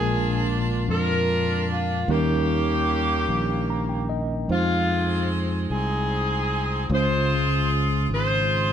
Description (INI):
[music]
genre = slow gospel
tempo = 50 BPM (dotted quarters)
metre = 6/8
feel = straight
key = unclear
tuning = A4 = 443 Hz
[part]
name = bright saxophone section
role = melody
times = 0.0-8.7 s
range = Ab3 to C5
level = -25 LUFS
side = equal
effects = none
[part]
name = mellow tine electric piano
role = accompaniment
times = 0.0-8.7 s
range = Bb2 to Bb5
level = -27 LUFS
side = equal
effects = medium stereo tremolo
[part]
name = fingered electric bass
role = bass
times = 0.0-8.7 s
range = Ab1 to F2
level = -25 LUFS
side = equal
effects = none
[sound]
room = light reverb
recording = none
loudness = -21 LUFS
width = side -9 dB against mid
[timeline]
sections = 0.0-8.7 A section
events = tine electric piano fill 3.3-4.5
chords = 0.0 Bb7; 2.1 Eb7; 4.5 Fm7; 6.9 Dbmaj7